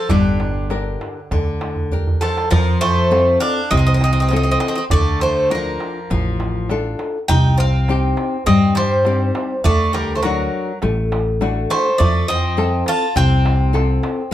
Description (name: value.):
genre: greek folk, Greek bouzouki band.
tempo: 101 BPM.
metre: 4/4.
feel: straight.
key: unclear.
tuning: A4 = 441 Hz.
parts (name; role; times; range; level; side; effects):
Greek bouzouki; melody; 0.0-14.3 s; G4 to A5; -20 LUFS; right 1 dB; plate reverb.
Greek bouzouki; second line; 0.0-14.3 s; D3 to F4; -24 LUFS; right 1 dB; none.
nylon-string guitar; accompaniment; 0.1-14.3 s; C3 to Bb4; -22 LUFS; left 4 dB; none.
upright bass; bass; 0.1-14.3 s; G1 to G2; -19 LUFS; equal; none.
darbuka; percussion; 0.1-14.2 s; none; -22 LUFS; right 2 dB; none.
room: light reverb.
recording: dark, warm production.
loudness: -15 LUFS.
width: side -12 dB against mid.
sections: 0.0-2.5 A section; 2.5-14.3 B section.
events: speeding up 0.0-14.3; drum fill 1.8-2.5.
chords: 0.1 Gm; 2.5 F; 4.9 Dm; 7.3 Cm; 9.6 D; 12.0 F.